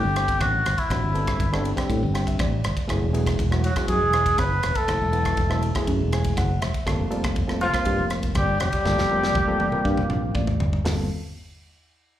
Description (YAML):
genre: electric jazz fusion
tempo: 121 BPM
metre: 4/4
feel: straight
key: unclear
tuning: A4 = 440 Hz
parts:
  - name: trumpet with cup mute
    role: melody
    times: 0.0-10.3 s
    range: E4 to B4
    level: -24 LUFS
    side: equal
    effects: slapback echo, tape echo
  - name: overdriven reed electric piano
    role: accompaniment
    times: 0.0-11.1 s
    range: F#3 to G#5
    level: -29 LUFS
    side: right 1 dB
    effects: slapback echo
  - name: fretless electric bass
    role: bass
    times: 0.0-11.1 s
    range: E1 to A2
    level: -24 LUFS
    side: equal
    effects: analog chorus
  - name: modern studio drum kit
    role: drums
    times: 0.2-11.0 s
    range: hi-hat, kick drum, ride cymbal, rim click, snare drum, toms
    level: -27 LUFS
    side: equal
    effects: none
  - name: breathy tenor saxophone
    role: second line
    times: 3.7-10.3 s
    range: F3 to B3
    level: -29 LUFS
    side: left 2 dB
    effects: slapback echo
room: light reverb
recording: live gig heard through the venue's PA, club reverb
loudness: -20 LUFS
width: side -12 dB against mid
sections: 0.0-10.9 A section; 10.9-12.2 B section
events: reed electric piano fill 1.9-2.9, 5.9-6.9, 9.4-10.9; drum fill 8.9-10.9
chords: 0.0 Am11; 2.9 F#m11; 6.9 Gm11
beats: 0.40 | 0.90 1.40 1.90 2.39 | 2.89 3.39 3.88 4.38 | 4.88 5.37 5.87 6.37 | 6.87 7.36 7.86 8.36 | 8.86 9.36 9.86 10.35 | 10.85